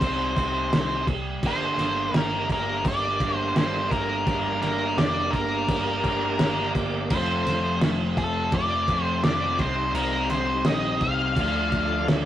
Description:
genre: classic rock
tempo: 84 BPM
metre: 4/4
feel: straight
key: G minor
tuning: A4 = 440 Hz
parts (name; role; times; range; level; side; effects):
- octave-fuzz lead guitar; melody; 0.0-12.1 s; A4 to F5; -26 LUFS; left 1 dB; distortion
- crunchy overdriven guitar; riff; 0.0-12.3 s; F2 to Eb4; -29 LUFS; equal; none
- hollow-body short-scale picked electric bass; bass; 0.0-12.3 s; F1 to D2; -33 LUFS; equal; none
- cloth-damped thuddy drum kit; drums; 0.0-12.3 s; crash cymbal, kick drum, snare drum; -26 LUFS; right 1 dB; none
- bright tonewheel organ; sustained chords; 1.4-12.3 s; G3 to D5; -34 LUFS; equal; slow rotary speaker, chorus vibrato
room: moderate studio reverb, RT60 0.7 s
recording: rough rehearsal-room recording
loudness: -22 LUFS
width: side -12 dB against mid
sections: 0.0-12.3 A section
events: none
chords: 0.0 Cm; 1.4 Gm; 7.1 F; 9.6 Cm; 11.4 Dm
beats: 0.01 0.72 | 1.43 2.14 2.85 3.56 | 4.27 4.98 5.69 6.40 | 7.12 7.83 8.54 9.25 | 9.96 10.67 11.39 12.10

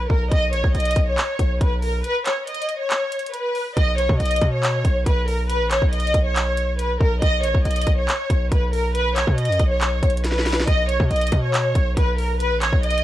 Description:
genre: hip hop, trap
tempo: 139 BPM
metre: 4/4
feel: half-time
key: B major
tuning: A4 = 436 Hz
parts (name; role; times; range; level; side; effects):
- warm studio violin section; melody; 0.0-13.0 s; A#4 to D#5; -22 LUFS; equal; none
- distorted 808-style bass; bass; 0.0-13.0 s; A#1 to B2; -22 LUFS; equal; distortion
- trap drum kit; drums; 0.1-13.0 s; handclaps, hi-hat, kick drum, snare drum; -21 LUFS; equal; none
room: digital ambience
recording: dry, gritty hardware recording, cassette tape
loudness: -18 LUFS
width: side -14 dB against mid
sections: 0.0-3.8 A section; 3.8-13.0 B section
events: break 2.0-3.8; drum fill 10.2-10.7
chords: 0.0 Badd9; 7.2 B5; 10.7 Badd9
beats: | 0.32 0.75 1.18 1.61 | 2.04 2.47 2.90 3.34 | 3.77 4.20 4.63 5.06 | 5.50 5.93 6.36 6.79 | 7.22 7.65 8.09 8.52 | 8.95 9.38 9.81 10.24 | 10.68 11.11 11.54 11.97 | 12.40 12.83

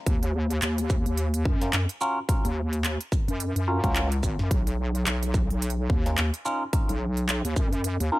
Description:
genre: glitch hop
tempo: 108 BPM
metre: 4/4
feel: swing 58% on 16ths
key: Eb minor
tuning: A4 = 437 Hz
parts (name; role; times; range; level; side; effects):
- wobble bass; bass; 0.1-8.1 s; Ab1 to Gb2; -26 LUFS; equal; chorus, overdrive
- dubstep drum kit; drums; 0.1-8.1 s; handclaps, hi-hat, shaker, snare drum; -30 LUFS; right 1 dB; studio reverb
- electronic kick drum; drums; 0.1-7.7 s; none; -25 LUFS; equal; studio reverb
- barky tine electric piano; stabs; 1.6-8.2 s; Db4 to Bb4; -30 LUFS; equal; overdrive, phaser, sidechain pumping, ping-pong delay
room: little or no reverb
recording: none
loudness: -23 LUFS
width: side -18 dB against mid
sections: 0.0-8.2 A section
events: none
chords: 0.1 Ebm9; 4.5 Bmaj9#11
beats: | 0.07 0.62 1.18 1.73 | 2.29 2.84 3.40 3.95 | 4.51 5.07 5.62 6.18 | 6.73 7.29 7.84

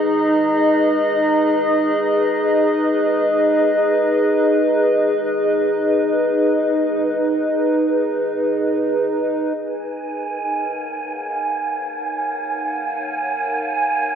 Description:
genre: ambient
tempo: free time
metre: none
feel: none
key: Eb minor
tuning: A4 = 440 Hz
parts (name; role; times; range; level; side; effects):
- warbly tape-like pad; sustained chords; 0.0-14.2 s; Eb4 to Ab5; -17 LUFS; equal; chorus, built-in reverb
- wind-like tuned noise texture; texture; 9.9-14.2 s; Ab5; -22 LUFS; right 3 dB; built-in reverb
room: wet huge ambient reverb, RT60 7.6 s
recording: in a vast, echoing space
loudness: -16 LUFS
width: side -8 dB against mid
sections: 0.0-9.6 A section; 9.6-14.2 B section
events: none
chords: 0.0 Abm/Eb; 9.6 Ebm11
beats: free time

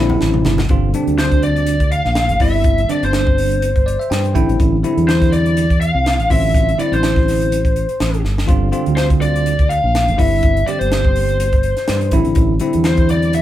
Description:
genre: electric jazz fusion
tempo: 123 BPM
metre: 4/4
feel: swing 55% on 16ths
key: unclear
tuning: A4 = 440 Hz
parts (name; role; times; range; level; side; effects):
- bell-like tine electric piano; accompaniment; 0.0-13.4 s; D3 to G5; -19 LUFS; equal; medium stereo tremolo
- fingered electric bass; bass; 0.0-13.4 s; G1 to G2; -17 LUFS; right 1 dB; none
- congas; percussion; 0.1-0.7 s; none; -24 LUFS; right 1 dB; none
- crisp fusion drum kit; drums; 0.2-13.4 s; hi-hat, kick drum, snare drum, toms; -18 LUFS; equal; none
- lead guitar through a small cranked amp; melody; 1.2-13.4 s; C5 to F5; -19 LUFS; left 1 dB; overdrive
room: moderate small room reverb, RT60 0.6 s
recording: band playing live in one room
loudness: -13 LUFS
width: side -13 dB against mid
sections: 0.7-13.4 A section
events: drum fill 0.0-0.7, 8.2; tine electric piano fill 3.6-4.6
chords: 0.0 Gmadd9; 0.7 Gm7; 2.4 Cadd9/G; 4.3 Am7; 6.3 Dm11/A; 8.5 Gm7; 10.2 Cadd9/G; 12.1 Am7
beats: 0.21 | 0.70 1.18 1.67 2.16 | 2.65 3.13 3.62 4.11 | 4.59 5.08 5.57 6.05 | 6.54 7.03 7.51 8.00 | 8.49 8.97 9.46 9.94 | 10.43 10.91 11.39 11.88 | 12.36 12.84 13.32

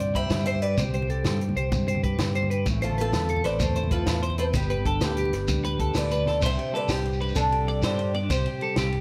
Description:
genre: highlife guitar band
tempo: 128 BPM (dotted quarters)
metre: 12/8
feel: straight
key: C major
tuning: A4 = 440 Hz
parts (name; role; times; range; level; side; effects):
- picked old ladder-braced acoustic guitar; melody; 0.0-8.7 s; D4 to G5; -32 LUFS; equal; none
- mellow electric guitar; accompaniment; 0.0-9.0 s; E2 to G4; -36 LUFS; equal; tremolo
- clean electric guitar; arpeggios; 0.0-9.0 s; G4 to B5; -33 LUFS; equal; subtle chorus, slapback echo
- fingered electric bass; bass; 0.0-9.0 s; G1 to G2; -30 LUFS; equal; none
- compact cocktail drum kit; drums; 0.0-9.0 s; crash cymbal, hi-hat, kick drum, ride cymbal, snare drum; -33 LUFS; equal; none
- congas; percussion; 0.1-6.4 s; none; -36 LUFS; equal; none
- shekere; percussion; 0.3-8.8 s; none; -36 LUFS; equal; none
room: light reverb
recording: none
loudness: -25 LUFS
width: mono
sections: 0.0-6.4 A section; 6.4-9.0 B section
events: drum fill 5.6-6.4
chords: 0.0 Csus2; 2.7 Am; 4.5 G; 6.4 Csus2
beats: 0.31 | 0.78 1.25 1.72 2.19 | 2.66 3.13 3.60 4.07 | 4.54 5.01 5.48 5.95 | 6.42 6.89 7.36 7.83 | 8.30 8.77

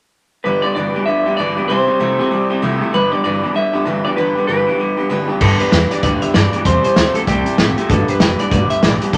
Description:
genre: rockabilly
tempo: 193 BPM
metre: 4/4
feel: swing 60% on 8ths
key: G major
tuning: A4 = 440 Hz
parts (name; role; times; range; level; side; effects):
- electric guitar through a small old amp; melody; 0.4-9.2 s; G4 to E5; -21 LUFS; equal; none
- electric guitar through a small old amp; riff; 0.4-9.2 s; G2 to A3; -22 LUFS; equal; none
- picked steel-string acoustic guitar; accompaniment; 0.5-9.2 s; G2 to G4; -24 LUFS; equal; none
- upright bass; bass; 5.4-9.2 s; F1 to G2; -22 LUFS; equal; none
- vintage drum kit; drums; 5.4-9.2 s; crash cymbal, hi-hat, kick drum, snare drum; -19 LUFS; equal; none
room: moderate studio reverb, RT60 0.8 s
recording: none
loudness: -16 LUFS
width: mono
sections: 0.4-5.4 A section; 5.4-9.2 B section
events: none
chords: 0.4 G; 1.7 C; 2.9 G; 6.7 C; 7.9 G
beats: | 0.45 0.76 1.07 1.38 | 1.69 2.00 2.31 2.62 | 2.93 3.24 3.55 3.86 | 4.17 4.48 4.79 5.10 | 5.41 5.72 6.03 6.34 | 6.65 6.96 7.27 7.58 | 7.89 8.20 8.52 8.82 | 9.14

